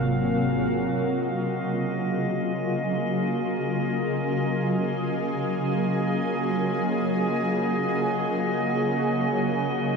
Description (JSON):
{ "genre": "ambient", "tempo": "free time", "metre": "none", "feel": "none", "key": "Gb major", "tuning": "A4 = 443 Hz", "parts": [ { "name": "shimmering ambient pad", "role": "sustained chords", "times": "0.0-10.0 s", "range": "C3 to Ab4", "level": "-24 LUFS", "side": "equal", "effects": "chorus, built-in reverb" }, { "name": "clear chamber double bass section", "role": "bass", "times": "0.0-0.6 s", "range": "Ab1", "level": "-39 LUFS", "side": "equal", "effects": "none" }, { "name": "drifting glass-harmonics texture", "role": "texture", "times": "0.0-10.0 s", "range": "Eb5 to F5", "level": "-32 LUFS", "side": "left 2 dB", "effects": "chorus, built-in reverb" } ], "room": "wet huge ambient reverb, RT60 7.3 s", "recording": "dark, warm production", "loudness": "-23 LUFS", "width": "side -5 dB against mid", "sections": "0.7-10.0 A section", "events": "none", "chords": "0.0 Ab13; 0.7 Gbmaj9" }